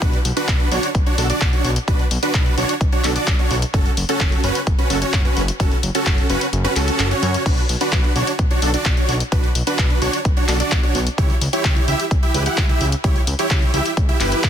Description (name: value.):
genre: EDM, festival progressive house.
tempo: 129 BPM.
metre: 4/4.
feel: straight.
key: B minor.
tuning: A4 = 440 Hz.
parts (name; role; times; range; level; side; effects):
dense compressed supersaw; riff; 0.0-14.5 s; C#4 to F#5; -21 LUFS; right 1 dB; sidechain pumping, dub echo.
fat analog bass; bass; 0.0-14.5 s; F#1 to F#2; -23 LUFS; equal; sidechain pumping.
big-room dance drum kit; drums; 0.0-14.5 s; crash cymbal, handclaps, hi-hat; -25 LUFS; left 2 dB; none.
electronic kick drum; drums; 0.0-14.5 s; none; -18 LUFS; equal; none.
room: digital ambience.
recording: dense, heavily limited modern master.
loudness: -16 LUFS.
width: side -9 dB against mid.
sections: 0.0-14.5 A section.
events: kick drops out 6.5-7.5.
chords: 0.0 Bm; 3.7 F#m; 7.5 Bm; 11.2 C#dim.